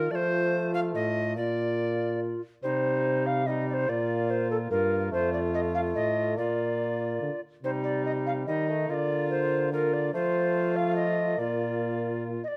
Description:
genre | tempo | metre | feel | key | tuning
classical, renaissance-style consort dance | 144 BPM | 3/4 | straight | unclear | A4 = 439 Hz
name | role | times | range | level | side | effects
mellow tenor recorder | melody | 0.0-12.6 s | F4 to F5 | -32 LUFS | equal | none
tenor recorder | second line | 0.0-12.4 s | Eb4 to F5 | -35 LUFS | equal | none
mellow bassoon | accompaniment | 0.0-12.4 s | G3 to Bb3 | -36 LUFS | equal | none
mellow trombone | bass | 0.0-12.4 s | F2 to F3 | -34 LUFS | equal | none
room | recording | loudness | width
light reverb | dark, warm production | -28 LUFS | mono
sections
0.0-2.6 A section; 2.6-12.6 A section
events
none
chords
0.1 F; 1.4 Bb; 2.6 Cm; 3.9 Bb; 5.1 F; 6.4 Bb; 7.6 Cm; 8.9 Bb/D; 10.1 F; 11.4 Bb

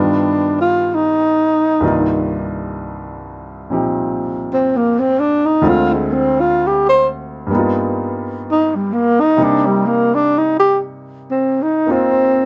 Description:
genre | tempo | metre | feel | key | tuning
jazz | 64 BPM | 4/4 | swing 68% on 8ths | C minor | A4 = 445 Hz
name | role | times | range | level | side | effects
breathy tenor saxophone | melody | 0.0-12.5 s | G3 to C5 | -16 LUFS | equal | none
clear baby grand piano | accompaniment | 0.0-12.5 s | C2 to D5 | -22 LUFS | equal | none
room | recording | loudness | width
light reverb | nothing above 8.0 kHz | -16 LUFS | mono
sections
0.0-12.5 A section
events
tenor saxophone solo 0.0-12.5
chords
0.0 G7b13; 1.8 Cm11; 5.6 Dm7b5; 7.5 G7alt; 9.4 Cm9

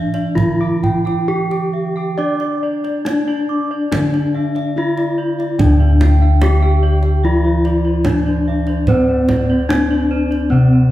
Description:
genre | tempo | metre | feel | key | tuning
Javanese gamelan | 64-73 BPM | 4/4 | straight | unclear | A4 = 440 Hz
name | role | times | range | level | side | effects
gamelan-type bronze metallophone | melody | 0.0-10.9 s | C4-40c to D5 | -19 LUFS | left 2 dB | none
gamelan-type bronze metallophone | accompaniment | 0.0-10.9 s | D3 to D4 | -22 LUFS | right 3 dB | none
gamelan-type bronze metallophone | arpeggios | 0.0-10.9 s | C5-40c to D6 | -27 LUFS | right 6 dB | none
gamelan-type bossed gongs | arpeggios | 0.1-10.9 s | C5-40c to D6 | -29 LUFS | left 7 dB | tape echo
kendang | percussion | 0.1-10.4 s | none | -21 LUFS | right 2 dB | none
gamelan-type bossed gongs | bass | 0.4-10.9 s | D2 to D5 | -16 LUFS | equal | none
room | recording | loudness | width
wet recital hall reverb, RT60 1.5 s | heard from further back in the room | -13 LUFS | side -14 dB against mid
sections
0.0-5.6 A section; 5.6-10.9 B section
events
none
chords
none

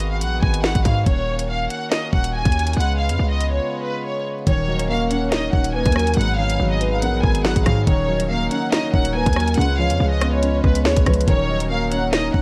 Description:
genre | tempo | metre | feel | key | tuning
hip hop, drill | 141 BPM | 4/4 | half-time | Eb minor | A4 = 442 Hz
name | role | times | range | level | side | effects
rich studio violin section | melody | 0.0-12.4 s | Cb5 to Ab5 | -27 LUFS | equal | low-pass filter, digital delay
hand-pumped harmonium | sustained chords | 0.0-12.4 s | Db3 to Cb5 | -32 LUFS | equal | none
hard-hitting 808-style bass | bass | 0.0-12.4 s | Eb1 to Ab2 | -24 LUFS | equal | none
drill drum kit | drums | 0.0-12.4 s | hi-hat, kick drum, rim click, snare drum | -22 LUFS | equal | none
dark concert grand piano | accompaniment | 4.5-12.4 s | Ab2 to Eb4 | -26 LUFS | equal | low-pass filter
hollow clarinet-like synth lead | second line | 4.7-12.4 s | Ab4 to Eb5 | -31 LUFS | equal | chorus, digital delay
room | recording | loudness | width
small room ambience | vinyl crackle | -20 LUFS | mono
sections
0.0-4.5 A section; 4.5-12.4 B section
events
break 3.6-4.5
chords
0.0 Abm7; 1.1 Ebm7; 2.8 Db7; 4.5 Ebm7; 6.2 Abm7; 7.9 Ebm7; 9.6 Db7; 11.3 Ebm7

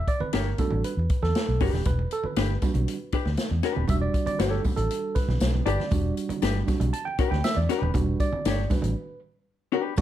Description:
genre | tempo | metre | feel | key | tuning
funk | 118 BPM | 4/4 | straight | E dorian | A4 = 441 Hz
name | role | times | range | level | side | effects
tine electric piano | stabs | 0.0-10.0 s | G3 to A5 | -30 LUFS | right 4 dB | overdrive
swinging big-band drum kit | drums | 0.1-10.0 s | crash cymbal, hi-hat, kick drum, snare drum | -28 LUFS | equal | none
vintage muted fingered electric bass | bass | 0.2-10.0 s | D#1 to E2 | -26 LUFS | equal | none
congas | percussion | 0.2-10.0 s | none | -35 LUFS | right 5 dB | none
vintage hollow-body jazz guitar | accompaniment | 0.3-9.9 s | D4 to C#5 | -28 LUFS | left 8 dB | none
tambourine | percussion | 1.9-10.0 s | none | -47 LUFS | left 4 dB | none
room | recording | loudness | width
light reverb | dark, warm production | -23 LUFS | side -12 dB against mid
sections
0.0-10.0 A section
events
tine electric piano solo 0.0-10.0; break 9.0-10.0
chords
0.0 Em7

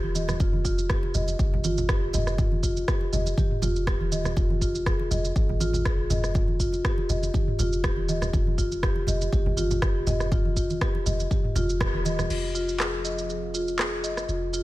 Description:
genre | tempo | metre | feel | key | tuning
afro house | 121 BPM | 4/4 | swing 54% on 16ths | F minor | A4 = 442 Hz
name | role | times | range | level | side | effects
warm 808-style bass | bass | 0.0-14.6 s | Eb1 to Ab1 | -30 LUFS | equal | sidechain pumping
congas | percussion | 0.0-12.3 s | none | -32 LUFS | right 3 dB | none
marimba with medium mallets | arpeggios | 0.2-14.6 s | F4 to Eb5 | -29 LUFS | left 1 dB | sidechain pumping, low-pass filter, tape echo
afro-pop drum kit | drums | 0.2-14.6 s | crash cymbal, handclaps, rim click, shaker, toms | -31 LUFS | right 1 dB | studio reverb
electronic kick drum | drums | 0.4-11.9 s | none | -26 LUFS | equal | studio reverb
dark analog pad | sustained chords | 12.3-14.6 s | D3 to F5 | -40 LUFS | right 6 dB | chorus, sidechain pumping
room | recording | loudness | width
little or no reverb | none | -23 LUFS | side -17 dB against mid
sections
0.0-12.3 A section; 12.3-14.6 B section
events
band accent 11.8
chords
0.4 Fsus2; 2.4 Eb/F; 4.4 Fm7; 6.4 Ebadd9; 8.3 Fsus2; 10.3 Eb/F; 12.3 Fm7

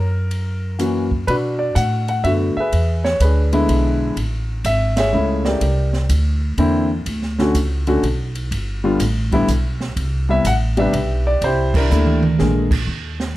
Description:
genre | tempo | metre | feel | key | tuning
jazz piano trio | 124 BPM | 3/4 | swing 67% on 8ths | unclear | A4 = 441 Hz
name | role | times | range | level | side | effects
warm concert grand piano | melody | 0.0-12.7 s | C3 to F#5 | -19 LUFS | left 1 dB | plate reverb
upright bass | bass | 0.0-13.3 s | G1 to B2 | -19 LUFS | equal | none
open jazz drum kit | drums | 0.3-13.3 s | crash cymbal, hi-hat, kick drum, ride cymbal, snare drum, toms | -26 LUFS | right 2 dB | none
room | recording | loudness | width
light reverb | dark, warm production | -16 LUFS | side -16 dB against mid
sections
0.0-1.3 A section; 1.3-12.9 B section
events
band accent 4.9, 11.7; drum fill 11.9-12.4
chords
0.0 Gb7; 1.3 Bm7; 2.7 E7; 4.2 Amaj7; 5.6 C9; 7.1 Dmaj7(no3); 8.5 G; 10.0 Cmaj7; 11.4 C13; 12.4 A#7

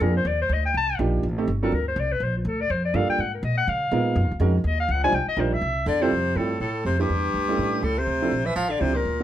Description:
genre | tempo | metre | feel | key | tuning
jazz, small-group swing and bop | 246 BPM | 4/4 | swing 60% on 8ths | unclear | A4 = 445 Hz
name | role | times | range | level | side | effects
clear clarinet | melody | 0.0-9.2 s | F4 to A5 | -25 LUFS | left 3 dB | plate reverb
warm concert grand piano | accompaniment | 0.0-9.2 s | F3 to C5 | -26 LUFS | right 4 dB | none
upright bass | bass | 0.0-9.2 s | G1 to Db3 | -25 LUFS | equal | none
bright baritone saxophone | second line | 5.9-9.2 s | G2 to F3 | -28 LUFS | right 3 dB | none
room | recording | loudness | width
light reverb | none | -21 LUFS | side -11 dB against mid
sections
0.0-6.1 A section; 6.1-9.2 B section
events
clarinet solo 0.0-6.1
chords
0.2 Ebmaj9; 1.2 Am7b5; 1.7 Bbadd9; 2.2 Gm9; 3.2 Absus2; 3.7 Db13; 4.2 Gb6; 5.1 Cm11; 5.6 C; 6.1 Fmaj7; 7.1 Dsus24; 7.6 A7; 8.1 Dm9

